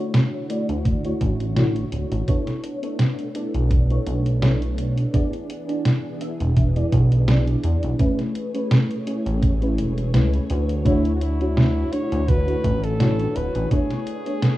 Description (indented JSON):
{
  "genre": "vaporwave",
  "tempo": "84 BPM",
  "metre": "4/4",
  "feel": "swing 54% on 16ths",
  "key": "D lydian",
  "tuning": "A4 = 440 Hz",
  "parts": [
    { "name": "mellow FM electric piano", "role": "accompaniment", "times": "0.0-14.6 s", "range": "A3 to E5", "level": "-26 LUFS", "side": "equal", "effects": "phaser, ensemble chorus, vintage 12-bit sampler grit, tape echo" },
    { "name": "soft string machine", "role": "sustained chords", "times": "0.0-14.6 s", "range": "D3 to C#5", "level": "-32 LUFS", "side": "equal", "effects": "ensemble chorus" },
    { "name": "detuned 8-bit digital drum machine", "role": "drums", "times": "0.1-14.6 s", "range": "hi-hat, snare drum", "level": "-20 LUFS", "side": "equal", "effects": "small room ambience" },
    { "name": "chorused synth bass", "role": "bass", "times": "0.7-13.7 s", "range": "D1 to E2", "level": "-21 LUFS", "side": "equal", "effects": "none" },
    { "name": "electronic kick drum", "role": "drums", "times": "0.9-13.9 s", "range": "none", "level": "-20 LUFS", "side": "equal", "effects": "small room ambience" },
    { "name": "warm flugelhorn", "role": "melody", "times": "10.9-14.6 s", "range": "E4 to C#5", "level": "-28 LUFS", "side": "equal", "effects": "vintage 12-bit sampler grit, tape echo" }
  ],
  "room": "little or no reverb",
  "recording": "rough home demo mix, cassette tape, small room ambience",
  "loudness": "-19 LUFS",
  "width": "side -16 dB against mid",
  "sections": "0.0-14.6 A section",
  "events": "none",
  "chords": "0.0 Dmaj9; 2.3 Bm11; 5.1 E7; 8.0 Amaj9; 10.9 Dmaj9; 13.7 Bm11",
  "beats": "0.14 0.85 1.57 | 2.28 3.00 3.71 4.42 | 5.14 5.85 6.57 7.28 | 8.00 8.71 9.43 10.14 | 10.85 11.57 12.28 13.00 | 13.71 14.43"
}